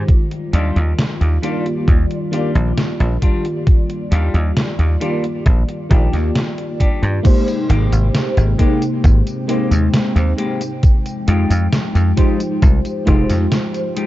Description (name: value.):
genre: vaporwave.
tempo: 67 BPM.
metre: 4/4.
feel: straight.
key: Eb major.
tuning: A4 = 441 Hz.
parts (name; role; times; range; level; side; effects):
FM electric piano with soft pad layer; accompaniment; 0.0-14.1 s; Eb3 to D5; -22 LUFS; equal; tremolo, ensemble chorus, tape echo.
warbly tape-like pad; sustained chords; 0.0-14.1 s; C3 to G5; -25 LUFS; left 2 dB; chorus, built-in reverb, vintage 12-bit sampler grit.
dry thumbed slap bass; bass; 0.0-13.5 s; F1 to G2; -15 LUFS; equal; none.
detuned 8-bit digital drum machine; drums; 0.1-14.1 s; crash cymbal, hi-hat, snare drum, tambourine; -22 LUFS; equal; gated reverb.
electronic kick drum; drums; 0.1-13.3 s; none; -12 LUFS; equal; none.
clean electric guitar; riff; 0.5-14.1 s; G3 to G4; -27 LUFS; left 3 dB; lush chorus, tape echo.
room: little or no reverb.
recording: cassette tape, nothing above 7.7 kHz.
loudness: -14 LUFS.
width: side -15 dB against mid.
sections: 0.0-7.2 A section; 7.2-14.1 B section.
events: none.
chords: 0.1 Ebmaj9; 7.2 Abmaj9; 10.8 Fm9.